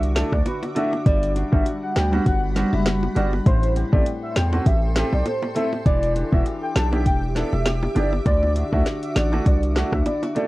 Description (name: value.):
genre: dancehall.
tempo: 100 BPM.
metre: 4/4.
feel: swing 56% on 16ths.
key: G major.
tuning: A4 = 444 Hz.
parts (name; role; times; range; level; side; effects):
granular cloud pad; sustained chords; 0.0-10.5 s; G3 to D6; -31 LUFS; equal; built-in reverb, sidechain pumping.
flamenco guitar; arpeggios; 0.0-10.5 s; A2 to G4; -30 LUFS; left 2 dB; none.
hard-hitting 808-style bass; bass; 0.0-10.0 s; E1 to E2; -22 LUFS; equal; none.
afro-pop drum kit; drums; 0.0-10.5 s; hi-hat, kick drum, rim click, snare drum; -20 LUFS; equal; none.
clear grand piano; accompaniment; 0.1-10.5 s; G3 to A4; -27 LUFS; right 1 dB; none.
warm velvety synth lead; melody; 0.3-10.5 s; B4 to A5; -27 LUFS; equal; chorus, tape echo.
bongos; percussion; 0.3-10.5 s; none; -30 LUFS; right 1 dB; none.
room: light reverb.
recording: worn, warbling old tape, cassette tape, warbly pitch drift.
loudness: -18 LUFS.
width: side -19 dB against mid.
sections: 0.0-10.5 A section.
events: none.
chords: 0.0 Dadd9; 1.1 Gmaj7; 3.5 Am7; 5.9 Em7; 8.3 Dadd9.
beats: 0.46 | 1.06 1.66 2.26 2.86 | 3.46 4.06 4.66 5.26 | 5.86 6.46 7.06 7.66 | 8.26 8.86 9.46 10.06.